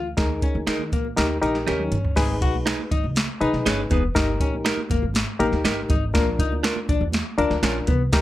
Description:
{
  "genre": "uptempo 1960s-style soul",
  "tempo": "121 BPM",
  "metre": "4/4",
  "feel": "straight",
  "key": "G# harmonic minor",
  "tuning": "A4 = 441 Hz",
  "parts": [
    { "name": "vintage hollow-body jazz guitar", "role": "riff", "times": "0.0-8.2 s", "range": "A#3 to G#4", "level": "-27 LUFS", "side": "left 6 dB", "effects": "none" },
    { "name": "upright bass", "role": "bass", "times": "0.0-8.2 s", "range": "E1 to D#3", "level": "-27 LUFS", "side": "equal", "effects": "none" },
    { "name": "barky reed electric piano", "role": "accompaniment", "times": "0.2-8.2 s", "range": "D4 to B4", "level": "-25 LUFS", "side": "left 2 dB", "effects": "overdrive, fast tremolo" },
    { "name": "soft vintage rhythm box", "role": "drums", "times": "0.2-8.2 s", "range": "crash cymbal, hi-hat, kick drum, snare drum, toms", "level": "-24 LUFS", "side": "equal", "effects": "none" },
    { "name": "congas", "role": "percussion", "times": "0.2-8.0 s", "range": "none", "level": "-37 LUFS", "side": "right 7 dB", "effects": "none" },
    { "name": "direct-recorded clean electric guitar", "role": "stabs", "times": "0.7-7.8 s", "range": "D4 to B4", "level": "-26 LUFS", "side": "right 6 dB", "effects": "none" },
    { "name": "finger snap", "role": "percussion", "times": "0.7-7.8 s", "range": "none", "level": "-32 LUFS", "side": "right 7 dB", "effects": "none" }
  ],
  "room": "light reverb",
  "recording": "none",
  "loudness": "-20 LUFS",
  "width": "side -14 dB against mid",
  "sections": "0.0-2.2 A section; 2.2-8.2 B section",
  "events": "drum fill 1.7-2.2",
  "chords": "0.2 D#sus4; 1.2 D#; 2.2 G#m; 4.2 D#/G; 6.1 A#",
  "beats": "| 0.18 0.68 1.17 1.67 | 2.17 2.67 3.16 3.66 | 4.16 4.65 5.15 5.65 | 6.14 6.64 7.14 7.63 | 8.13"
}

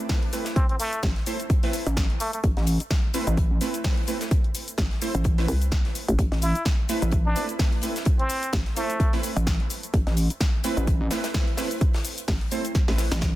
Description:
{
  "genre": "bass house",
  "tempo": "128 BPM",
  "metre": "4/4",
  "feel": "swing 56% on 16ths",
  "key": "A minor",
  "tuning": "A4 = 444 Hz",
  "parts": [
    { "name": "orchestra-hit-like synth stab", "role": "stabs", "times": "0.0-13.0 s", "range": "A3 to C5", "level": "-31 LUFS", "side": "right 2 dB", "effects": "built-in reverb, sidechain pumping, dub echo" },
    { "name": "big rock drum kit", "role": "drums", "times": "0.1-13.3 s", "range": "hi-hat, snare drum", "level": "-39 LUFS", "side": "left 2 dB", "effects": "high-pass filter on hats, studio reverb, high-pass filter on snare, high-pass filter on room" },
    { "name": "electronic kick drum", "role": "drums", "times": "0.1-13.3 s", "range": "none", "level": "-23 LUFS", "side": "equal", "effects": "studio reverb" },
    { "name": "house drum kit", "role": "drums", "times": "0.1-13.3 s", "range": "hi-hat, shaker, snare drum", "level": "-32 LUFS", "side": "left 1 dB", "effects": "studio reverb" },
    { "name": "trumpet with plunger mute", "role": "melody", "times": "0.6-2.4, 6.4-9.1 s", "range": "A3 to E4", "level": "-31 LUFS", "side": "equal", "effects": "dub echo" },
    { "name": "hollow knocking FM bass", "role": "bass", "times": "1.0-13.1 s", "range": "A1 to C2", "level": "-25 LUFS", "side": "equal", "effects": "overdrive, sidechain pumping" },
    { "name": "pulsing pluck wobble bass", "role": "bass", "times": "1.9-13.3 s", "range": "A1", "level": "-24 LUFS", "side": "equal", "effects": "chorus, tube saturation, sidechain pumping" }
  ],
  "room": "small room ambience",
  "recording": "dense, heavily limited modern master",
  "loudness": "-22 LUFS",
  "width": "side -16 dB against mid",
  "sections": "0.0-13.4 A section",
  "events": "drum fill 12.8-13.4",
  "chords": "0.0 Amadd9",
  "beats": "0.09 | 0.56 1.03 1.50 1.97 | 2.44 2.91 3.38 3.84 | 4.31 4.78 5.25 5.72 | 6.19 6.66 7.12 7.59 | 8.06 8.53 9.00 9.47 | 9.94 10.41 10.88 11.34 | 11.81 12.28 12.75 13.22"
}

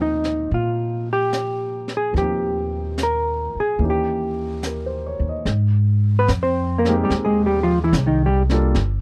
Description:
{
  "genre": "jazz ballad",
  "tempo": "73 BPM",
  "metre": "4/4",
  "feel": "swing 69% on 8ths",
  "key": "Eb major, Ab major from 5.5 s",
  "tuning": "A4 = 441 Hz",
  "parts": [
    { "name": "hollow-body jazz guitar", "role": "melody", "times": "0.0-8.4 s", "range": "Eb3 to C5", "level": "-23 LUFS", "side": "equal", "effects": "none" },
    { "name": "warm baby grand piano", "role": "accompaniment", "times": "0.0-8.8 s", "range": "Fb3 to G5", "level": "-30 LUFS", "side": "equal", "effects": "none" },
    { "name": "upright bass", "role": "bass", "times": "0.0-9.0 s", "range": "G1 to Bb2", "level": "-24 LUFS", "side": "equal", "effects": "none" },
    { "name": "jazz brush drum kit", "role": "drums", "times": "0.2-9.0 s", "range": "brushed snare drum, hi-hat, snare drum", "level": "-31 LUFS", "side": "equal", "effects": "none" }
  ],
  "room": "little or no reverb",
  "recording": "dry, close 1970s-style studio recording",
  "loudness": "-21 LUFS",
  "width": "mono",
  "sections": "0.0-5.5 A section; 5.5-9.0 B section",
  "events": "hollow-body jazz guitar solo 5.5-9.0",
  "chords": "0.0 Eb69; 3.8 Eb7b9; 5.5 Abmaj7",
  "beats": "0.51 1.33 | 2.15 2.98 3.81 4.64 | 5.47 6.29 7.12 7.94 | 8.76"
}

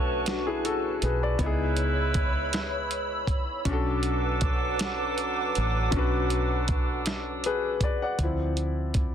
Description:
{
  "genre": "slow six-eight R&B",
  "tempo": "53 BPM (dotted quarters)",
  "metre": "6/8",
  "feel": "straight",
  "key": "B dorian",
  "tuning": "A4 = 441 Hz",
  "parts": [
    { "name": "clear concert grand piano", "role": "accompaniment", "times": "0.0-9.1 s", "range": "F3 to F#5", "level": "-30 LUFS", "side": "left 4 dB", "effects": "plate reverb" },
    { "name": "hollow soft pad", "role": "sustained chords", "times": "0.0-8.1 s", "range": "B4 to E6", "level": "-33 LUFS", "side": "right 2 dB", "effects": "ensemble chorus, plate reverb" },
    { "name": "clear horn section", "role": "stabs", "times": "0.0-7.8 s", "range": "F#3 to C#5", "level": "-32 LUFS", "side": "right 4 dB", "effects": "plate reverb" },
    { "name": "deep dub fingered electric bass", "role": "bass", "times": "0.0-9.1 s", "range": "A1 to D2", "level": "-30 LUFS", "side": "equal", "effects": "none" },
    { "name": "dusty soul sampler-style drum kit", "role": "drums", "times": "0.3-9.1 s", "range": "hi-hat, kick drum, snare drum", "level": "-28 LUFS", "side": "equal", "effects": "none" }
  ],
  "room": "light reverb",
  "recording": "dense, heavily limited modern master",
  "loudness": "-24 LUFS",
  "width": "side -9 dB against mid",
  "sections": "0.0-8.2 A section",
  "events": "none",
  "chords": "0.0 Bm9; 1.4 C#m9; 3.7 Bm9; 8.2 Dm9",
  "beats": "0.26 | 1.39 2.52 | 3.65 4.79 | 5.92 7.05 | 8.18"
}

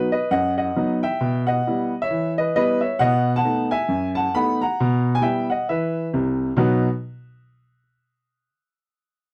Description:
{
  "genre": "jazz, stride piano",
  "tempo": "134 BPM",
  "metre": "4/4",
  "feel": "swing 59% on 8ths",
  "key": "B major",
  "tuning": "A4 = 440 Hz",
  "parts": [
    { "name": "warm baby grand piano", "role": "solo", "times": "0.0-6.9 s", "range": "C2 to B5", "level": "-22 LUFS", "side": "equal", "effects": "none" }
  ],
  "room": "light reverb",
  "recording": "dry, close 1970s-style studio recording",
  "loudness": "-22 LUFS",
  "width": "mono",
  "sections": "0.0-6.6 A section; 6.6-8.4 B section",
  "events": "none",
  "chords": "0.0 B; 1.2 Em/B; 3.0 B7; 4.8 Em/B; 6.6 B",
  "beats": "0.30 0.75 | 1.20 1.65 2.10 2.55 | 3.00 3.45 3.90 4.34 | 4.79 5.24 5.69 6.14 | 6.59"
}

